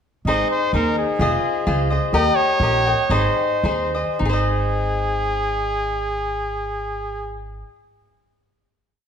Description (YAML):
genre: mexican folk, mariachi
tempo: 97-130 BPM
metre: 2/4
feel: straight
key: Ab major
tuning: A4 = 435 Hz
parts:
  - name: upright bass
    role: bass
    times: 0.2-7.6 s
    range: F1 to Eb2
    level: -24 LUFS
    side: right 1 dB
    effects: none
  - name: bright trumpet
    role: melody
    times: 0.3-7.4 s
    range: Ab4 to Eb5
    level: -23 LUFS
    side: right 1 dB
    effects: none
  - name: cavaquinho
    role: accompaniment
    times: 0.3-7.8 s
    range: Eb4 to G5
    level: -21 LUFS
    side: left 3 dB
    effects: none
room: moderate recital hall reverb, RT60 1.6 s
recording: none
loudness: -18 LUFS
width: side -7 dB against mid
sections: 0.3-4.2 A section; 4.2-6.6 final chord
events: slowing down 2.1-4.2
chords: 0.3 Ab; 1.2 Fm7; 2.1 Eb; 3.1 Ab